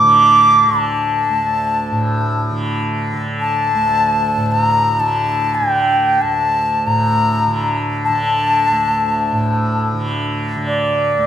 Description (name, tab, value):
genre	indian classical, Hindustani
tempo	free time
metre	none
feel	none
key	unclear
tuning	A4 = 438 Hz
part	bright reedy bansuri	melody	0.0-11.3 s	D5 to D6	-14 LUFS	equal	none
part	tanpura	drone	0.0-11.3 s	D2 to D3	-19 LUFS	right 1 dB	none
room	wet recital hall reverb, RT60 1.3 s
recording	none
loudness	-14 LUFS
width	side -10 dB against mid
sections	0.0-11.3 A section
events	none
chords	none